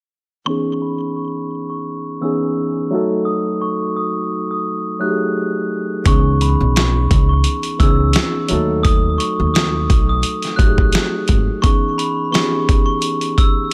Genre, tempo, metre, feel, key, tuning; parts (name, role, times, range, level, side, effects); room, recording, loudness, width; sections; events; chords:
hip hop, boom-bap hip-hop; 86 BPM; 4/4; swing 55% on 16ths; C# minor; A4 = 439 Hz
glockenspiel with hard plastic mallets; melody; 0.5-13.7 s; B5 to F#6; -26 LUFS; equal; high-pass filter, low-pass filter, digital delay
tine electric piano; accompaniment; 0.5-13.7 s; E3 to A4; -23 LUFS; equal; overdrive, cassette tape, high-pass filter, low-pass filter
upright bass; bass; 6.1-11.5 s; G#1 to D#2; -20 LUFS; equal
dusty soul sampler-style drum kit; drums; 6.1-13.6 s; hi-hat, kick drum, snare drum; -18 LUFS; equal
light reverb; -17 LUFS; mono
0.5-11.6 A section; 11.6-13.7 B section
filter sweep 11.6-13.7
0.5 C#m7; 2.9 D#dim; 6.1 C#m7; 8.5 D#dim; 11.6 C#m7